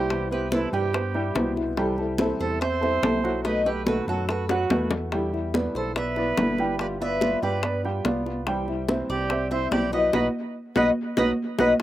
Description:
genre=latin, Cuban son and guajira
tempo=144 BPM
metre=4/4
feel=straight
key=unclear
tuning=A4 = 438 Hz
part: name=Cuban tres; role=melody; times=0.0-11.7 s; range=A4 to F#5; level=-28 LUFS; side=left 3 dB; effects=none
part: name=bright reedy silver concert flute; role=second line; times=0.0-11.7 s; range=E4 to C5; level=-29 LUFS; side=right 4 dB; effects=slapback echo
part: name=flamenco guitar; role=accompaniment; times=0.0-11.8 s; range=B2 to A4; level=-31 LUFS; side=left 2 dB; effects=slapback echo
part: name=warm baby grand piano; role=arpeggios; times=0.0-11.8 s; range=B2 to G5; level=-28 LUFS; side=right 3 dB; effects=slapback echo
part: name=round analog bass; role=bass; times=0.0-11.7 s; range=G1 to G2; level=-32 LUFS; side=equal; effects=none
part: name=bongos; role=percussion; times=0.1-11.8 s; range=none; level=-30 LUFS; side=left 4 dB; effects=slapback echo
part: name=congas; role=percussion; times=0.1-11.8 s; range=none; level=-29 LUFS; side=equal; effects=none
room=little or no reverb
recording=recorded outdoors, with no room sound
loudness=-22 LUFS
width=side -14 dB against mid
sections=0.0-11.8 A section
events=drum fill 4.5-5.1, 11.2-11.8; band accent 10.1-11.8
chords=0.1 Cmaj7; 1.8 Am7/C; 3.4 B7; 5.1 Em7; 6.8 G7; 8.5 C; 10.1 B

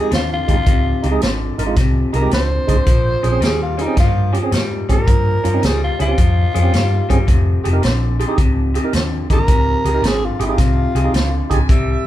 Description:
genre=electric blues shuffle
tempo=109 BPM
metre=4/4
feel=swing 67% on 8ths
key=F minor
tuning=A4 = 440 Hz
part: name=growling tenor saxophone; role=melody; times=0.0-11.7 s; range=Eb4 to C5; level=-21 LUFS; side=equal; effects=none
part: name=tonewheel organ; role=accompaniment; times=0.0-11.6 s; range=Ab3 to Bb4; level=-24 LUFS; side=right 5 dB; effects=slow rotary speaker
part: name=electric guitar through a small old amp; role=riff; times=0.0-12.0 s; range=F2 to G3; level=-23 LUFS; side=left 2 dB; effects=none
part: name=vintage muted fingered electric bass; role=bass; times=0.1-12.0 s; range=F1 to Ab2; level=-18 LUFS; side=equal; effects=none
part: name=vintage drum kit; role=drums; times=0.1-11.9 s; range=hi-hat, kick drum, snare drum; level=-18 LUFS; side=equal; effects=none
part: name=mellow harmonica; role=second line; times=11.5-12.1 s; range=E5 to Ab5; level=-26 LUFS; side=right 7 dB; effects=overdrive
room=light reverb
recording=band playing live in one room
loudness=-14 LUFS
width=side -13 dB against mid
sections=0.0-12.1 A section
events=none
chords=0.0 Fm7; 2.9 Bbm7; 7.3 Fm7

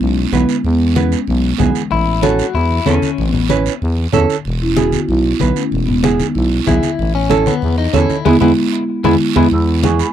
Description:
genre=latin, cumbia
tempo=189 BPM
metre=4/4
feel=straight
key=E major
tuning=A4 = 440 Hz
part: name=marimba with soft mallets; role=melody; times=0.0-1.8, 4.6-10.1 s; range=E3 to E6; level=-17 LUFS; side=right 1 dB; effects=none
part: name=growling FM bass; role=bass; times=0.0-10.0 s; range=E1 to E2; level=-16 LUFS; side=equal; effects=none
part: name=guiro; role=percussion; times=0.0-10.1 s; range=none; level=-28 LUFS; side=right 18 dB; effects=none
part: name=congas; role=percussion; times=0.2-10.0 s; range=none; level=-21 LUFS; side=left 6 dB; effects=none
part: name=nylon-string guitar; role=accompaniment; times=0.3-10.1 s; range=B3 to B4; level=-16 LUFS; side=right 8 dB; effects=none
part: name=clean electric guitar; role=second line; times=1.9-3.5, 6.7-9.5 s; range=G#3 to F#4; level=-20 LUFS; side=left 9 dB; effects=tape echo
room=light reverb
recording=dry, close 1970s-style studio recording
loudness=-12 LUFS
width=side -10 dB against mid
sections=0.0-9.5 A section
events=band accent 8.3-9.5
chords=0.0 E; 1.9 A; 4.5 E; 7.0 A; 8.3 E

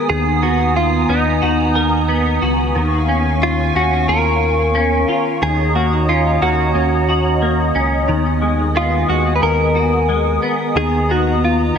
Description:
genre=dream pop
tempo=90 BPM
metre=4/4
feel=straight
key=unclear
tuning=A4 = 437 Hz
part: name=direct-recorded clean electric guitar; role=melody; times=0.0-11.8 s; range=D#4 to Cb5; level=-18 LUFS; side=equal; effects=analog chorus, ping-pong delay
part: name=hollow soft pad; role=sustained chords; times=0.0-11.8 s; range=B3 to Eb6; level=-20 LUFS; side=equal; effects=ensemble chorus
part: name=semi-hollow electric guitar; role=arpeggios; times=0.0-11.8 s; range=D#3 to A#4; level=-19 LUFS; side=left 2 dB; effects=ensemble chorus, ping-pong delay
part: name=round analog bass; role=bass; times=0.1-11.8 s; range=Db2 to D#2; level=-20 LUFS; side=right 1 dB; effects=none
room=moderate plate reverb, RT60 2.3 s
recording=nothing above 11.0 kHz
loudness=-14 LUFS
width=side -7 dB against mid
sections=0.0-11.8 A section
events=none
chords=0.1 Bmaj7/D#; 2.8 Db7/Eb; 5.4 Ebm7; 8.1 Abm7/Eb; 10.8 Bmaj7/D#

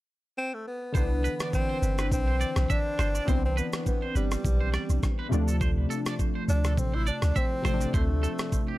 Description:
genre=afrobeats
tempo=103 BPM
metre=4/4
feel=swing 55% on 16ths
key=C major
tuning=A4 = 440 Hz
part: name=breathy tenor saxophone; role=melody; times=0.4-8.8 s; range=G3 to E4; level=-32 LUFS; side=left 1 dB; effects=analog delay
part: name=warm analog keys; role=accompaniment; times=0.9-8.8 s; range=C3 to B4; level=-32 LUFS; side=left 1 dB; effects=chorus, analog delay
part: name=punchy sub bass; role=bass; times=0.9-8.3 s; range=G1 to D2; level=-26 LUFS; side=equal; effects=none
part: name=boom bap sampler-style drum kit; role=drums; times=0.9-8.7 s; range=kick drum, rim click, shaker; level=-29 LUFS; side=equal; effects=none
part: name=twangy electric guitar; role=riff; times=1.0-8.8 s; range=G4 to E5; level=-37 LUFS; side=right 5 dB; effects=tremolo, analog delay
room=digital ambience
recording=echo-heavy mix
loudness=-25 LUFS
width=side -17 dB against mid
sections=0.9-8.8 A section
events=none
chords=0.0 N.C.; 0.9 Cmaj9; 5.3 Dm7

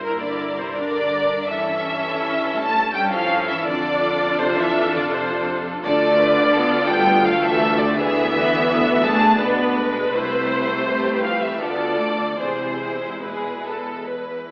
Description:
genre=classical, slow romantic movement for string orchestra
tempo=66-86 BPM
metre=3/4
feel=rubato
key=D minor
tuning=A4 = 442 Hz
part: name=muted symphonic violin section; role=melody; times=0.0-14.5 s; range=G#4 to B4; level=-26 LUFS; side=equal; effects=none
part: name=muted studio violin section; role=second line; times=0.0-14.1 s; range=Bb4 to A5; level=-20 LUFS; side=equal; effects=none
part: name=muted symphonic viola section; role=accompaniment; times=0.0-14.5 s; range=G#3 to G4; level=-24 LUFS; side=equal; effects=none
part: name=muted symphonic cello section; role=bass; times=0.0-14.1 s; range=Bb2 to A3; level=-27 LUFS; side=equal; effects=none
part: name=muted symphonic double bass section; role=bass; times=0.0-14.5 s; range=C2 to G2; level=-29 LUFS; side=equal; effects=none
room=wet scoring stage reverb, RT60 1.7 s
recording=AM radio sound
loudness=-17 LUFS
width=side -34 dB against mid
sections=0.0-14.5 A section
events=none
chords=0.0 Edim/G; 1.5 A7/G; 3.7 Dm/F; 5.8 Bm7b5/D; 8.0 E7/D; 10.1 Am/C; 11.6 Bm7b5/D; 12.4 E

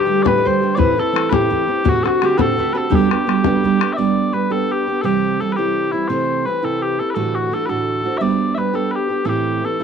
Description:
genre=celtic folk, Celtic jig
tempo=113 BPM (dotted quarters)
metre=6/8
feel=straight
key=G major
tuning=A4 = 440 Hz
part: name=mellow small bagpipes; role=melody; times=0.0-9.8 s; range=E4 to E5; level=-21 LUFS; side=left 2 dB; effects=none
part: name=concert harp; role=second line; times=0.0-5.3 s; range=F#4 to E5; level=-28 LUFS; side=right 3 dB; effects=none
part: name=marimba with soft mallets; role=second line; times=0.0-9.8 s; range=E4 to E5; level=-22 LUFS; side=left 7 dB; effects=none
part: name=fingerpicked steel-string acoustic guitar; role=accompaniment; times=0.0-9.8 s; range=D2 to G4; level=-19 LUFS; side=right 7 dB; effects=none
part: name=bodhran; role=percussion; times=0.3-3.9 s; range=none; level=-20 LUFS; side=left 8 dB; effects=none
room=small room ambience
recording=dry, close 1970s-style studio recording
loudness=-15 LUFS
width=side -7 dB against mid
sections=0.0-4.0 A section; 4.0-9.8 B section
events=none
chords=0.0 Dsus4; 0.8 Am; 1.9 D7; 2.9 G; 5.0 C; 6.1 Am/C; 7.2 Dadd9; 8.2 G; 9.3 Am

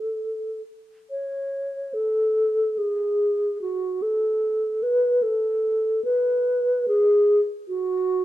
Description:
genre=classical, free, expressive piece for unaccompanied alto flute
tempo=50-76 BPM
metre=3/4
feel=rubato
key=A major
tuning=A4 = 437 Hz
part: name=mellow hollow wooden-headed alto flute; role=solo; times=0.0-8.2 s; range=F#4 to C#5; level=-21 LUFS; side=equal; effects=none
room=wet recital hall reverb, RT60 1.5 s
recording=close, detailed microphones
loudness=-21 LUFS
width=side -14 dB against mid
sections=0.0-1.1 A section; 1.1-8.2 B section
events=none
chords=none

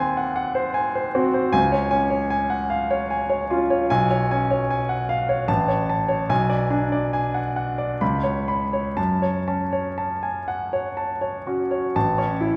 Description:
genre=classical, romantic character piece for solo piano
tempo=59-78 BPM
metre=3/4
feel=rubato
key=F# minor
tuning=A4 = 440 Hz
part: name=clear grand piano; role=solo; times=0.0-12.6 s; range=A1 to B5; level=-23 LUFS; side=equal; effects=none
room=wet scoring stage reverb, RT60 2.0 s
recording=heard from further back in the room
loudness=-23 LUFS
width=mono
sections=0.0-12.0 A section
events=none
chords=0.0 G#7/D#; 1.5 C#; 3.9 C#7/B; 5.5 A; 6.3 G#m7b5/B; 8.0 Bsus2/C#; 9.0 F#m; 12.0 A

